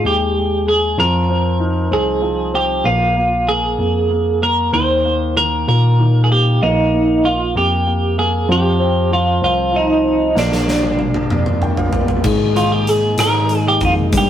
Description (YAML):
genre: six-eight pop ballad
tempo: 64 BPM (dotted quarters)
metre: 6/8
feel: straight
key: unclear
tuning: A4 = 445 Hz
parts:
  - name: twelve-string electric guitar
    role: melody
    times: 0.0-14.3 s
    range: D4 to C5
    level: -17 LUFS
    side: right 1 dB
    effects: tremolo
  - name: warm concert grand piano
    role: accompaniment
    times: 0.0-14.3 s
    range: Eb3 to G5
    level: -21 LUFS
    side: left 2 dB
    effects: none
  - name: tine electric piano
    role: bass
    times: 0.0-14.3 s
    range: Bb1 to Bb2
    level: -18 LUFS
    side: equal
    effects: none
  - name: huge arena drum kit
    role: drums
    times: 10.4-14.3 s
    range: crash cymbal, hi-hat, kick drum, rim click, snare drum, toms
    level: -20 LUFS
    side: equal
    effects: none
  - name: warm analog pad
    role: sustained chords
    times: 12.2-14.3 s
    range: Eb3 to Ab4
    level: -23 LUFS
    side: left 1 dB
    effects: chorus
room: moderate stone room reverb, RT60 1.1 s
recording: rough rehearsal-room recording, warm saturation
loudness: -13 LUFS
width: side -10 dB against mid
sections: 0.0-12.3 A section; 12.3-14.3 B section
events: drum fill 10.4-12.3; grand piano fill 11.3-12.3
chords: 0.0 Ab5; 1.0 Fm7; 2.9 Bb5; 4.7 Eb5; 6.6 Bbsus4; 8.5 F5; 10.4 Bb; 12.3 Absus2